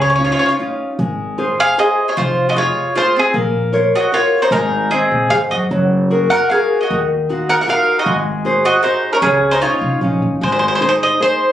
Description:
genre	italian folk, Italian serenade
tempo	152 BPM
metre	3/4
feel	rubato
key	Db major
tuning	A4 = 441 Hz
part	mandolin	melody	0.0-11.5 s	Ab4 to Gb5	-16 LUFS	equal	plate reverb
part	nylon-string guitar	accompaniment	0.0-11.5 s	Db3 to Eb5	-18 LUFS	left 1 dB	none
part	upright bass	bass	0.0-10.9 s	F1 to Bb2	-21 LUFS	equal	none
part	mandolin	second line	0.2-10.0 s	C4 to Bb4	-18 LUFS	right 1 dB	none
room	moderate studio reverb, RT60 0.6 s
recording	recorded on a phone in the room, club reverb, compression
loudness	-13 LUFS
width	side -11 dB against mid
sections	0.0-10.4 A section; 10.4-11.5 B section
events	none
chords	0.0 Dbadd9; 1.0 Ab6; 2.2 Fm; 3.3 Bbmadd9; 4.5 Ab; 5.7 Gbadd9; 6.9 Ebmadd9; 8.1 Ab7; 9.2 Dbadd9; 10.4 Ab

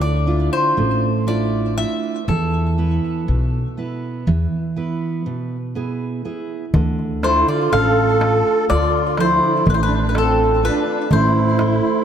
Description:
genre	greek folk, Greek bouzouki band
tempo	122 BPM (eighths)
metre	9/8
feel	straight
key	unclear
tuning	A4 = 440 Hz
part	Greek bouzouki	melody	0.0-12.0 s	A4 to F5	-20 LUFS	left 2 dB	ping-pong delay
part	fingerpicked steel-string acoustic guitar	accompaniment	0.0-12.0 s	B2 to C5	-22 LUFS	right 4 dB	none
part	upright bass	bass	0.0-11.8 s	A1 to E2	-20 LUFS	left 1 dB	none
part	darbuka	percussion	6.7-11.8 s	none	-22 LUFS	right 1 dB	none
part	musette accordion	second line	7.2-12.0 s	C4 to A4	-20 LUFS	right 2 dB	ping-pong delay
room	wet plate reverb, RT60 3.2 s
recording	dreamy mix soaked in reverb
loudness	-16 LUFS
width	side -9 dB against mid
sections	0.0-6.7 A section; 6.7-12.0 B section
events	speeding up 0.0-12.0; break 4.5-6.7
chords	0.0 Dmadd9; 2.3 E; 6.7 Dm; 11.1 Am

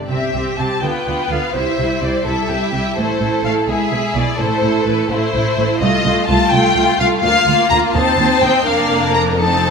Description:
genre	quick classical-period movement for string orchestra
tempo	84 BPM (dotted quarters)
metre	6/8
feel	straight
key	C major, Bb major from 5.8 s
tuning	A4 = 441 Hz
part	rich studio cello section	bass	0.0-9.7 s	C2 to D3	-23 LUFS	right 3 dB	none
part	warm studio violin section	melody	0.1-9.7 s	B4 to Bb5	-18 LUFS	left 4 dB	none
part	clear studio viola section	accompaniment	0.1-9.7 s	G3 to G4	-19 LUFS	right 2 dB	none
part	warm studio double bass section	bass	0.1-9.7 s	F1 to Eb2	-24 LUFS	right 3 dB	none
part	rich studio violin section	second line	0.8-9.7 s	E4 to C5	-20 LUFS	left 1 dB	none
room	wet scoring stage reverb, RT60 1.6 s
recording	minimal, uncompressed stereo recording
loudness	-13 LUFS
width	side -5 dB against mid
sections	0.1-9.7 A section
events	none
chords	0.1 C; 0.8 G7/D; 1.5 C; 3.0 Am; 3.7 E; 4.4 Am; 5.8 F7/C; 7.2 Bb; 8.0 Cm; 8.7 Bb/F

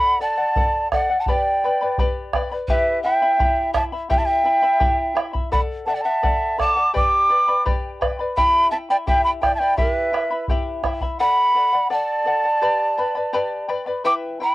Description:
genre	andean folk, Andean ensemble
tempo	84 BPM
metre	2/4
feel	straight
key	E minor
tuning	A4 = 442 Hz
part	large quena	melody	0.0-14.5 s	E5 to D6	-18 LUFS	equal	none
part	bright polished pan flute	second line	0.0-14.5 s	B4 to A5	-28 LUFS	right 3 dB	cassette tape, analog delay
part	charango	accompaniment	0.0-14.5 s	E4 to B5	-25 LUFS	left 3 dB	cassette tape
part	bombo	percussion	0.6-11.2 s	none	-24 LUFS	right 1 dB	none
room	light reverb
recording	home recording on cassette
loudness	-17 LUFS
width	side -18 dB against mid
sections	0.0-11.2 A section; 11.2-14.5 A section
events	none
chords	0.0 D; 1.3 G; 2.7 Em; 5.5 D; 6.9 G; 8.4 Em; 11.2 D; 12.6 G

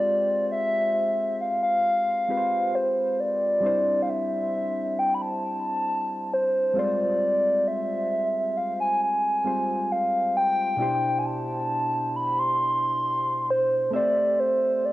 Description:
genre	R&B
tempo	67 BPM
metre	4/4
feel	straight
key	C major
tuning	A4 = 440 Hz
part	hollow clarinet-like synth lead	melody	0.0-14.9 s	C5 to C6	-23 LUFS	equal	chorus, plate reverb, tape echo
part	soft electric-piano-like synth keys	accompaniment	0.0-14.9 s	B2 to E5	-31 LUFS	equal	chorus, cassette tape, plate reverb
room	moderate studio reverb, RT60 0.5 s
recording	home recording on cassette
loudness	-22 LUFS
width	side -16 dB against mid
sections	0.0-14.9 A section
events	none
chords	0.0 Fmadd9; 3.6 Cadd9; 6.8 Fmadd9; 10.8 Cmaj9; 13.9 C6

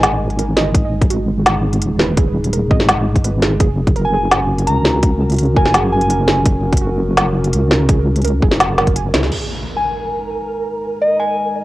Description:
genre	half-time drum and bass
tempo	168 BPM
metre	4/4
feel	half-time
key	unclear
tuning	A4 = 440 Hz
part	soft synth bell	melody	0.0, 4.0-6.4, 9.8-11.5 s	D#5 to A#5	-20 LUFS	equal	chorus, analog delay
part	dark analog pad	sustained chords	0.0-11.6 s	G#3 to A#4	-24 LUFS	equal	chorus, vintage 12-bit sampler grit, sidechain pumping, cassette tape
part	warbly dusty pluck	arpeggios	0.0-9.3 s	F#4 to G#5	-25 LUFS	right 8 dB	chorus, cassette tape, tape echo
part	deep soft wobble bass	bass	0.0-9.3 s	D#1 to C#2	-17 LUFS	equal	chorus, tube saturation
part	organic electronic drum kit	drums	0.0-9.4 s	crash cymbal, hi-hat, snare drum	-16 LUFS	equal	overdrive, cassette tape
part	electronic kick drum	drums	0.7-8.9 s	none	-14 LUFS	equal	cassette tape
part	impact	sound effects	9.3-10.7 s	none	-29 LUFS	equal	none
part	flickering grainy texture	texture	9.7-11.6 s	A#4	-25 LUFS	right 3 dB	built-in reverb, cassette tape
room	light reverb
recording	home recording on cassette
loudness	-13 LUFS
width	side -17 dB against mid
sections	0.0-9.3 A section; 9.3-11.6 B section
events	band accent 9.1; impact 9.3-10.7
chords	0.0 G#m; 3.6 F#; 9.3 G#5

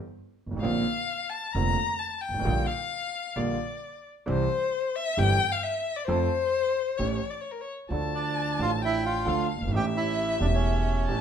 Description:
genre	tango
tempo	132 BPM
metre	4/4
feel	rubato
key	D harmonic minor from 7.9 s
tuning	A4 = 440 Hz
part	warm grand piano	accompaniment	0.5-11.2 s	E1 to A4	-30 LUFS	right 2 dB	none
part	upright bass	bass	0.5-11.2 s	E1 to F2	-30 LUFS	right 1 dB	none
part	warm violin	second line	0.6-11.2 s	Bb4 to Bb5	-29 LUFS	left 5 dB	none
part	bandoneon	melody	8.1-11.2 s	C#4 to G4	-29 LUFS	right 4 dB	none
room	moderate large studio reverb, RT60 0.9 s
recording	minimal, uncompressed stereo recording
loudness	-25 LUFS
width	side -8 dB against mid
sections	0.0-7.9 A section; 7.9-11.2 B section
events	violin solo 0.0-7.9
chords	0.0 N.C.; 0.6 Bbadd9; 2.5 Gm7/Bb; 4.3 C; 6.1 F; 7.0 A7; 7.9 Dm; 9.7 A7

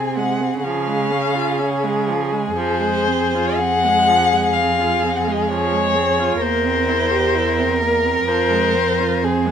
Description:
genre	classical, slow romantic movement for string quartet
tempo	63 BPM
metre	4/4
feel	rubato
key	unclear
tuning	A4 = 440 Hz
part	warm violin	melody	0.0-9.5 s	Bb4 to Ab5	-20 LUFS	left 4 dB	none
part	warm violin	second line	0.0-9.5 s	Ab4 to Bb4	-21 LUFS	left 1 dB	none
part	rich viola	accompaniment	0.0-9.5 s	F3 to G4	-24 LUFS	right 6 dB	none
part	warm cello	bass	0.0-9.5 s	E2 to Db3	-24 LUFS	right 4 dB	none
room	light reverb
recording	minimal, uncompressed stereo recording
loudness	-16 LUFS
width	side -8 dB against mid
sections	0.0-9.5 A section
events	none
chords	0.0 Ab7/C; 0.6 Db; 2.6 Fm; 6.4 C7/E; 8.3 Fm

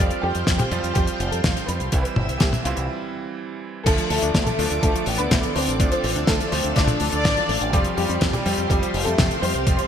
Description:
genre	italo disco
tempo	124 BPM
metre	4/4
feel	straight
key	D minor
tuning	A4 = 440 Hz
part	warm symphonic violin section	melody	0.0-9.9 s	G3 to D5	-26 LUFS	left 1 dB	ping-pong delay
part	string machine, full ensemble	sustained chords	0.0-9.9 s	G4 to F6	-29 LUFS	equal	ensemble chorus
part	bright electric grand piano	stabs	0.0-9.9 s	E3 to F4	-30 LUFS	right 6 dB	ping-pong delay
part	fingered electric bass with an envelope filter	bass	0.0-9.8 s	F1 to F2	-27 LUFS	equal	none
part	damped 70s drum kit	drums	0.1-9.9 s	crash cymbal, hi-hat, snare drum, toms	-24 LUFS	left 2 dB	gated reverb
part	electronic kick drum	drums	0.5-9.8 s	none	-22 LUFS	equal	none
part	warbly dusty pluck	arpeggios	3.9-9.9 s	C3 to D4	-31 LUFS	left 2 dB	chorus, ping-pong delay
room	moderate lush hall reverb, RT60 2.0 s, small room ambience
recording	bright 1980s-style digital production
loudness	-19 LUFS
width	side -8 dB against mid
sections	0.0-3.9 A section; 3.9-9.9 B section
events	break 2.9-3.9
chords	0.0 Fsus2; 1.9 C; 3.9 Dm; 7.7 Fsus2

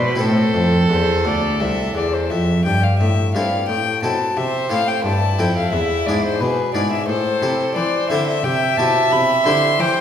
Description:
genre	classical, baroque-style sonata movement with continuo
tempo	88 BPM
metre	4/4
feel	rubato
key	A minor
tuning	A4 = 441 Hz
part	warm violin	melody	0.0-10.0 s	B4 to C6	-21 LUFS	left 5 dB	none
part	warm violin	second line	0.0-10.0 s	E4 to E5	-22 LUFS	right 4 dB	none
part	harpsichord	accompaniment	0.0-10.0 s	C2 to A4	-22 LUFS	left 2 dB	none
part	rich cello	bass	0.0-10.0 s	C2 to E3	-21 LUFS	equal	none
room	wet recital hall reverb, RT60 1.4 s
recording	recorded in a church or concert hall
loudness	-16 LUFS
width	side -9 dB against mid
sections	0.0-3.0 A section; 3.0-10.0 B section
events	none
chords	0.2 Am; 5.7 E7; 7.1 Am; 8.4 C

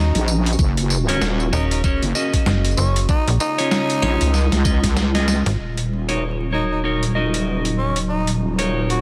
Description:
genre	glitch hop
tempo	96 BPM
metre	4/4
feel	swing 59% on 16ths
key	Eb minor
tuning	A4 = 437 Hz
part	growling tenor saxophone	melody	0.0-9.0 s	Db4 to Gb4	-29 LUFS	equal	digital delay
part	warbly tape-like pad	sustained chords	0.0-9.0 s	Db3 to Gb4	-33 LUFS	equal	none
part	slap-like FM bass	bass	0.0-5.6 s	Eb1 to Eb2	-21 LUFS	equal	none
part	wobble bass	bass	0.1-9.0 s	Eb1 to Db2	-22 LUFS	equal	chorus, tube saturation
part	boom bap sampler-style drum kit	drums	0.1-9.0 s	hi-hat, rim click, snare drum, tambourine	-27 LUFS	equal	overdrive
part	electronic kick drum	drums	0.6-4.9 s	none	-21 LUFS	equal	overdrive
part	clean electric guitar	stabs	1.1-9.0 s	Db4 to Eb5	-27 LUFS	equal	sidechain pumping, low-pass filter, digital delay
room	light reverb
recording	dense, heavily limited modern master, vinyl crackle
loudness	-19 LUFS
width	mono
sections	0.0-5.6 A section; 5.6-9.0 B section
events	drum fill 4.3-5.6; filter sweep on ambient pad 5.6-9.0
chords	0.0 Ebm7; 3.1 Db; 5.6 Ebm7

